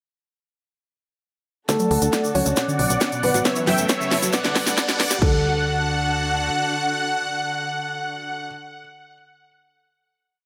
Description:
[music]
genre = uplifting trance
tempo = 136 BPM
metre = 4/4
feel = straight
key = D major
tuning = A4 = 440 Hz
[part]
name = supersaw chords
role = melody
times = 1.7-8.5 s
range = C#5 to A5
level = -27 LUFS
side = equal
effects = cassette tape, sidechain pumping, low-pass filter, delay
[part]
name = felt-muted upright piano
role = second line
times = 1.7-8.5 s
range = A3 to C#5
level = -29 LUFS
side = equal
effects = delay
[part]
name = dark studio string section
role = sustained chords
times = 1.7-8.5 s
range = D3 to B4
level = -34 LUFS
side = equal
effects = sidechain pumping
[part]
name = analog pluck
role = arpeggios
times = 1.7-5.4 s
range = B2 to D4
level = -31 LUFS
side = equal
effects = chorus, cassette tape, sidechain pumping, delay
[part]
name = electronic kick drum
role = drums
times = 1.7-5.3 s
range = none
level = -25 LUFS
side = equal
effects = high-pass filter on kick
[part]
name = house drum kit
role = drums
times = 1.7-5.3 s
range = crash cymbal, hi-hat, snare drum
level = -26 LUFS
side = equal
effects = sidechain pumping on hats, sidechain pumping on cymbals
[part]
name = tube shaker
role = percussion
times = 1.7-5.2 s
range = none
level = -31 LUFS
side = equal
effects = none
[part]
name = riser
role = sound effects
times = 3.1-5.2 s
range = none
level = -36 LUFS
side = equal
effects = none
[part]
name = tight sequencer bass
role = bass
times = 1.9-6.5 s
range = D1 to D2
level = -29 LUFS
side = equal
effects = sidechain pumping
[sound]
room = moderate lush hall reverb, RT60 1.8 s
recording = high-pass filter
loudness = -21 LUFS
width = mono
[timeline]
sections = 1.7-5.2 build; 5.2-8.7 final chord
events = build-up 1.7-5.2; drum fill 1.7-5.2; filter sweep on supersaw synth 1.7-5.2; filter sweep on synth pluck 1.7-5.2; filter sweep 1.7-5.2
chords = 1.7 D; 2.6 Bm; 3.5 F#m7; 4.3 Gadd9; 5.2 D

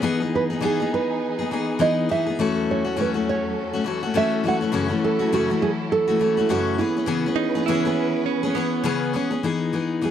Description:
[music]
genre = acoustic pop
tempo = 102 BPM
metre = 4/4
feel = swing 60% on 16ths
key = E major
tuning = A4 = 440 Hz
[part]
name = picked steel-string acoustic guitar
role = accompaniment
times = 0.0-10.1 s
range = F#2 to G#4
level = -22 LUFS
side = left 5 dB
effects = none
[part]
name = warm studio string section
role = sustained chords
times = 0.0-9.4 s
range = E2 to B4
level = -31 LUFS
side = right 4 dB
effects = none
[part]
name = nylon-string guitar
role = melody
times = 0.4-10.1 s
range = E4 to F#5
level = -24 LUFS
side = right 5 dB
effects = none
[part]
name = direct-recorded clean electric guitar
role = second line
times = 7.4-9.4 s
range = B3 to E4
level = -26 LUFS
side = right 17 dB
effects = none
[sound]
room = light reverb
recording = dry, close 1970s-style studio recording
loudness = -20 LUFS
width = side -9 dB against mid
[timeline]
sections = 0.0-9.4 A section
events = none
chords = 0.0 Emaj7; 2.4 A6/E; 4.4 F#m7; 6.8 C#m7; 9.4 Emaj7

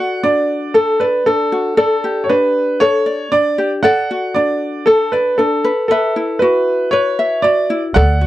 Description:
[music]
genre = acoustic pop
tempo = 117 BPM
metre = 4/4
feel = swing 55% on 16ths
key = unclear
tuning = A4 = 440 Hz
[part]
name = bright upright piano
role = melody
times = 0.0-8.3 s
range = A4 to F#5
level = -15 LUFS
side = right 1 dB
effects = none
[part]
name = ukulele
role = accompaniment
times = 0.0-8.3 s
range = D4 to E5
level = -17 LUFS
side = left 2 dB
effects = none
[part]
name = upright bass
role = bass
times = 8.0-8.3 s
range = D2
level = -11 LUFS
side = equal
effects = none
[sound]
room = light reverb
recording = dry, close 1970s-style studio recording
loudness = -13 LUFS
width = side -14 dB against mid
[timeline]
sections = 0.0-8.3 A section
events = none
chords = 0.0 D; 1.8 Gsus2; 3.8 D; 5.6 Esus2

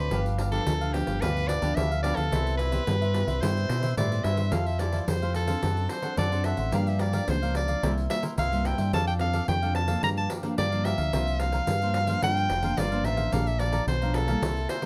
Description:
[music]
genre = samba and choro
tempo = 109 BPM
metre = 4/4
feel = straight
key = C major, F major from 4.5 s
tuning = A4 = 440 Hz
[part]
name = edgy soprano saxophone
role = melody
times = 0.0-14.9 s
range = G4 to Bb5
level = -32 LUFS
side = equal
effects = none
[part]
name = cavaquinho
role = accompaniment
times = 0.0-14.9 s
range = D4 to Bb5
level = -38 LUFS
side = equal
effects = none
[part]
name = nylon-string guitar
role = accompaniment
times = 0.0-14.9 s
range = F2 to A4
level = -36 LUFS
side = equal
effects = none
[part]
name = fingered electric bass with an envelope filter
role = bass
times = 0.0-14.7 s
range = F1 to B2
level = -30 LUFS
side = equal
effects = none
[part]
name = pandeiro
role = percussion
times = 0.1-14.9 s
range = none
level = -35 LUFS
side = equal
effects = none
[sound]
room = light reverb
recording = close, detailed microphones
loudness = -27 LUFS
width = mono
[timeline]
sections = 0.0-4.5 A section; 4.5-14.9 B section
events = none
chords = 0.1 G7; 2.3 Cmaj7; 4.5 Fmaj9; 5.6 D7/F#; 6.7 Gm7; 7.8 C7; 8.9 F6; 10.0 Gm7; 11.1 C9sus4; 13.3 Bbmaj7

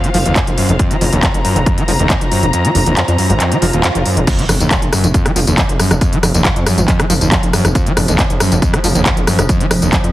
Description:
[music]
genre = driving peak-time techno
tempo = 138 BPM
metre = 4/4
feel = straight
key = unclear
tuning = A4 = 443 Hz
[part]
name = screaming distorted acid line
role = riff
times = 0.0-10.0 s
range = Eb2 to F3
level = -17 LUFS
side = equal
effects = distortion, wide subtle chorus, vintage 12-bit sampler grit, sidechain pumping, digital delay
[part]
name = techno drum kit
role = drums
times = 0.0-10.1 s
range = crash cymbal, handclaps, hi-hat, rim click, tambourine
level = -17 LUFS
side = equal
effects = overdrive
[part]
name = warm studio string section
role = texture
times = 0.0-4.3 s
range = F4 to Bb5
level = -20 LUFS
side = left 2 dB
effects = sidechain pumping
[part]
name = gritty driven synth bass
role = bass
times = 0.1-10.1 s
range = Eb1 to F2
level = -15 LUFS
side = equal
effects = tube saturation, sidechain pumping
[part]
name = electronic kick drum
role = drums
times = 0.4-10.0 s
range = none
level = -16 LUFS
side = equal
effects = overdrive
[part]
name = swell and impact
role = sound effects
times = 3.6-6.0 s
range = none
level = -25 LUFS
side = right 2 dB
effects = none
[part]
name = swarming drone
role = drone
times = 5.3-10.1 s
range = F3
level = -22 LUFS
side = right 1 dB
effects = built-in reverb, sidechain pumping
[sound]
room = light reverb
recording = heavily compressed radio sound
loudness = -11 LUFS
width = side -15 dB against mid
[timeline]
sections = 0.0-4.3 A section; 4.3-10.1 B section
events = kick drops out 2.5-4.3; swell 3.6-4.3; drop 4.3-10.1; impact 4.3-6.0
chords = 0.0 F5

